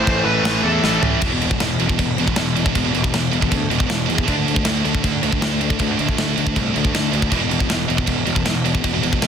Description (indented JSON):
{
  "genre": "heavy metal",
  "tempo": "157 BPM",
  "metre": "4/4",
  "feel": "straight",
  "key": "unclear",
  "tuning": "A4 = 440 Hz",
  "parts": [
    { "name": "high-gain lead guitar", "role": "melody", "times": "0.0-1.0 s", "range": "A4 to C5", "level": "-23 LUFS", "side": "left 1 dB", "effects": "distortion, tape echo" },
    { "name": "distorted electric guitar", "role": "riff", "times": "0.0-1.2 s", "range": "A2 to A3", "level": "-23 LUFS", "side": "equal", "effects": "distortion" },
    { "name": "heavy high-gain guitar", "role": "riff", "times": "0.0-9.3 s", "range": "E2 to D4", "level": "-24 LUFS", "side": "left 14 dB", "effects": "distortion" },
    { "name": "heavy high-gain guitar", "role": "riff", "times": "0.0-9.3 s", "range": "E2 to D4", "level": "-23 LUFS", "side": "right 14 dB", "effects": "distortion" },
    { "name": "fuzz picked electric bass", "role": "bass", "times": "0.1-9.3 s", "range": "E1 to E2", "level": "-23 LUFS", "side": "equal", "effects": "overdrive" },
    { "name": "tight metal drum kit", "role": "drums", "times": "0.1-9.3 s", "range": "china cymbal, crash cymbal, kick drum, snare drum, toms", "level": "-21 LUFS", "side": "equal", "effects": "none" }
  ],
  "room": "little or no reverb",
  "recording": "dense, heavily limited modern master",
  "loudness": "-16 LUFS",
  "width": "side -8 dB against mid",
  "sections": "0.0-1.2 A section; 1.2-9.3 B section",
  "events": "half time 0.0-1.2; drum fill 0.8-1.2",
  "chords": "0.0 A5; 1.2 E5; 4.3 D5; 7.3 E5"
}